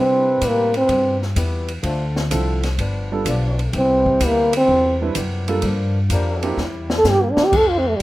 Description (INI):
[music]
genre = jazz, big band swing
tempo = 126 BPM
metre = 4/4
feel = swing 69% on 8ths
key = C major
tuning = A4 = 440 Hz
[part]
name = breathy trombone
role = melody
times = 0.0-8.0 s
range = G3 to A4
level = -15 LUFS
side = equal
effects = none
[part]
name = picked old ladder-braced acoustic guitar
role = accompaniment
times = 0.0-7.9 s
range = F2 to A4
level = -30 LUFS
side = left 3 dB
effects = none
[part]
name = warm concert grand piano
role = accompaniment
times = 0.0-6.6 s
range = F3 to B4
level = -24 LUFS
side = right 4 dB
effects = none
[part]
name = mellow trombone section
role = sustained chords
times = 0.0-6.6 s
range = G3 to D5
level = -28 LUFS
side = left 2 dB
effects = none
[part]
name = upright bass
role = bass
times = 0.0-8.0 s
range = G1 to C3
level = -22 LUFS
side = equal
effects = none
[part]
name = open jazz drum kit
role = drums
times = 0.4-8.0 s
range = crash cymbal, hi-hat, kick drum, ride cymbal, snare drum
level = -27 LUFS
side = left 1 dB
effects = none
[sound]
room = moderate studio reverb, RT60 0.6 s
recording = rough home demo mix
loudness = -16 LUFS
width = side -17 dB against mid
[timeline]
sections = 0.0-7.5 A section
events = trombone solo 0.0-8.0; drum fill 6.6-7.5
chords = 0.0 Cmaj7; 1.8 Dm7; 2.8 G7; 3.7 Cmaj7; 5.6 Gm7; 6.6 C7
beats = 0.42 0.89 1.37 | 1.84 2.32 2.79 3.26 | 3.74 4.21 4.69 5.16 | 5.63 6.11 6.58 7.06 | 7.53 8.01